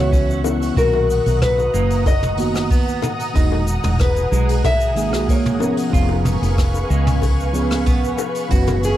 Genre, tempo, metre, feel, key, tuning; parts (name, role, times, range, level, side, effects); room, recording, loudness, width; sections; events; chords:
sunset chillout; 93 BPM; 4/4; straight; A4 = 440 Hz
nylon-string guitar; melody; 0.0-9.0 s; G#4 to E5; -22 LUFS; left 2 dB; cassette tape, analog delay
mellow FM electric piano; accompaniment; 0.0-9.0 s; A#2 to A#4; -24 LUFS; equal; chorus, auto-pan, cassette tape, analog delay
ethereal airy pad; sustained chords; 0.0-9.0 s; G#4 to D#6; -27 LUFS; equal; ensemble chorus, built-in reverb, vintage 12-bit sampler grit, cassette tape
fingered electric bass; bass; 0.0-8.9 s; E1 to C#2; -20 LUFS; equal; tube saturation
clean electric guitar; arpeggios; 0.1-8.8 s; G#3 to F#4; -28 LUFS; right 9 dB; cassette tape, analog delay
electronic kick drum; drums; 0.1-8.6 s; -18 LUFS; equal; cassette tape
jazz brush drum kit; drums; 0.1-9.0 s; hi-hat, rim click, shaker, toms; -27 LUFS; equal; cassette tape
bongos; percussion; 0.4-8.8 s; -29 LUFS; left 13 dB
light reverb, small room ambience; home recording on cassette; -15 LUFS; side -13 dB against mid
0.0-9.0 A section
0.0 F#7sus4; 0.8 Bmaj7; 3.3 Emaj9#11; 5.6 C#7/E#